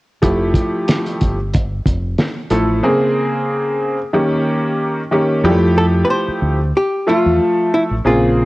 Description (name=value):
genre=hip hop, jazz-hop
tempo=92 BPM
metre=4/4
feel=swing 58% on 16ths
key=F major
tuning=A4 = 440 Hz
part: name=bright upright piano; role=accompaniment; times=0.2-8.5 s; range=Db3 to E5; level=-16 LUFS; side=equal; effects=cassette tape
part: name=deep dub fingered electric bass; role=bass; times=0.2-8.5 s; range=F1 to F2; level=-18 LUFS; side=equal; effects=none
part: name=cloth-damped thuddy drum kit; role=drums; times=0.2-2.7 s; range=hi-hat, kick drum, snare drum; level=-16 LUFS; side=equal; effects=none
part: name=archtop guitar, miked and amplified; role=melody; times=5.8-8.5 s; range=E4 to C5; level=-17 LUFS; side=left 1 dB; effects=cassette tape
room=light reverb, studio reverb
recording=home recording on cassette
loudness=-14 LUFS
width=side -19 dB against mid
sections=0.2-5.4 A section; 5.4-8.5 B section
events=silent gap 2.8-5.4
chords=0.2 Fmaj9; 2.8 Bbm9; 4.1 Eb7; 5.4 Fmaj9